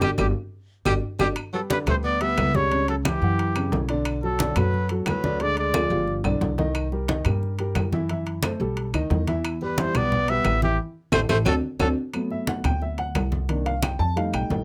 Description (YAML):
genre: Afro-Cuban jazz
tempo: 178 BPM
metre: 4/4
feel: straight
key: G major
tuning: A4 = 440 Hz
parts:
  - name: breathy trumpet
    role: melody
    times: 0.0-6.2, 9.6-11.9 s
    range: G4 to E5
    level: -28 LUFS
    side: equal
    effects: none
  - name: warm tenor saxophone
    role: second line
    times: 0.0-6.0, 9.6-11.9 s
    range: E3 to B3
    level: -32 LUFS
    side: equal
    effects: none
  - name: warm upright piano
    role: accompaniment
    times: 0.0-14.6 s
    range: C#3 to A5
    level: -30 LUFS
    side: equal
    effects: none
  - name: upright bass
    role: bass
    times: 0.0-14.6 s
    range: G1 to G2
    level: -29 LUFS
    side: equal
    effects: none
  - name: claves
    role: percussion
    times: 0.0-14.5 s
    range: none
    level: -37 LUFS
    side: equal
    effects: none
  - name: congas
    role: percussion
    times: 0.0-14.6 s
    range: none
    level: -31 LUFS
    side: equal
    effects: none
  - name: timbales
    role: percussion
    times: 0.0-14.6 s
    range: none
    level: -34 LUFS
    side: equal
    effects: none
room: light reverb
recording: close, detailed microphones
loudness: -24 LUFS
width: mono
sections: 0.0-1.4 A section; 1.4-12.1 B section; 12.1-14.6 C section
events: band accent 0.0-1.4, 10.8-12.1; drum fill 0.7-1.4, 5.7-6.8; upright piano solo 12.1-14.6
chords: 0.0 Gmaj7(no3); 1.4 G6; 2.7 C#dim; 3.4 F#5; 4.1 Bm7; 5.4 Ddim; 6.1 G7b13; 6.8 Cm7; 8.1 F#m7b5; 8.8 B7alt; 9.4 Em7; 10.8 Am7; 11.5 D7; 12.1 D13; 13.5 Cm9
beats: | 0.02 0.35 0.69 1.03 | 1.37 1.70 2.04 2.38 | 2.71 3.05 3.39 3.72 | 4.06 4.39 4.73 5.07 | 5.40 5.74 6.08 6.41 | 6.75 7.09 7.42 7.76 | 8.10 8.43 8.77 9.11 | 9.44 9.78 10.12 10.45 | 10.79 11.13 11.46 11.80 | 12.14 12.48 12.81 13.15 | 13.49 13.83 14.17 14.51